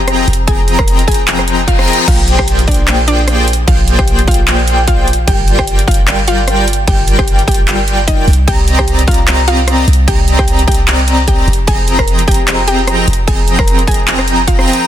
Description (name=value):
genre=future bass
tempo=150 BPM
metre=4/4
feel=swing 56% on 16ths, half-time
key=F dorian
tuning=A4 = 440 Hz
part: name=mallet-like synth pluck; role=melody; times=0.0-14.8 s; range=D4 to Bb5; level=-19 LUFS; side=left 1 dB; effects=chorus, sidechain pumping, tape echo
part: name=airy dreamy lead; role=arpeggios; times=0.0-14.9 s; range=G5 to Bb5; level=-20 LUFS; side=equal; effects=chorus, sidechain pumping, dub echo
part: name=big bright polysynth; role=riff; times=0.0-14.9 s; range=F3 to Bb5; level=-17 LUFS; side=left 1 dB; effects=chorus, sidechain pumping
part: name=warm 808-style bass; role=bass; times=0.0-14.7 s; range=F1 to C2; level=-14 LUFS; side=equal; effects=sidechain pumping
part: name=big-room dance drum kit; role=drums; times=0.1-14.8 s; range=crash cymbal, handclaps, hi-hat, rim click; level=-18 LUFS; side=equal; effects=overdrive
part: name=electronic kick drum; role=drums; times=0.5-14.6 s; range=none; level=-13 LUFS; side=equal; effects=overdrive
part: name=reverse cymbal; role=sound effects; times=1.5-2.1 s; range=none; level=-20 LUFS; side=left 7 dB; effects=none
room=little or no reverb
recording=dense, heavily limited modern master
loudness=-9 LUFS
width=side -11 dB against mid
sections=0.0-14.9 A section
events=drop 0.0-14.9; reverse cymbal 1.5-2.1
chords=0.0 Fm11; 2.1 Bb13; 5.3 Gm7; 8.3 Cm9; 11.5 Fm11